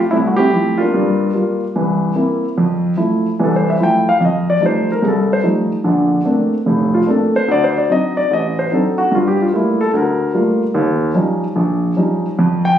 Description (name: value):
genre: solo jazz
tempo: 147 BPM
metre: 4/4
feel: swing 66% on 8ths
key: F major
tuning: A4 = 441 Hz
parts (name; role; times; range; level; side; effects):
- dark grand piano; solo; 0.0-12.8 s; F1 to G5; -13 LUFS; equal; none
room: light reverb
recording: recorded on a phone in the room, studio reverb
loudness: -13 LUFS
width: side -10 dB against mid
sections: 0.0-2.6 A section; 2.6-12.8 B section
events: grand piano solo 2.6-12.8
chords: 0.0 Fmaj7; 0.9 Gm7; 1.8 C7; 2.6 Fmaj7; 4.2 F9; 5.8 Bbmaj9; 7.5 D7b9; 9.1 Gm9; 10.7 Eb9